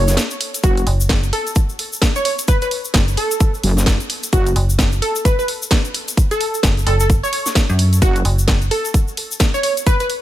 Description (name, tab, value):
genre	bass house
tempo	130 BPM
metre	4/4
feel	swing 60% on 16ths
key	F# minor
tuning	A4 = 440 Hz
part	plucky unison lead	melody	0.0-10.1 s	F#4 to C#5	-22 LUFS	right 1 dB	lush chorus, dub echo
part	wobble bass	bass	0.0-0.9, 3.6-4.5, 8.0-8.2 s	F#1	-17 LUFS	equal	chorus, tube saturation, sidechain pumping
part	garage drum kit	drums	0.1-10.2 s	hi-hat, snare drum	-22 LUFS	equal	small room ambience
part	egg shaker	percussion	0.1-10.1 s	none	-26 LUFS	left 3 dB	none
part	electronic kick drum	drums	0.6-10.0 s	none	-15 LUFS	equal	small room ambience
part	metallic FM bass	bass	0.9-8.7 s	F#1 to F#2	-16 LUFS	equal	overdrive, sidechain pumping
room	little or no reverb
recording	none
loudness	-14 LUFS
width	side -13 dB against mid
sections	0.0-10.2 A section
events	break 0.2-0.6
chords	none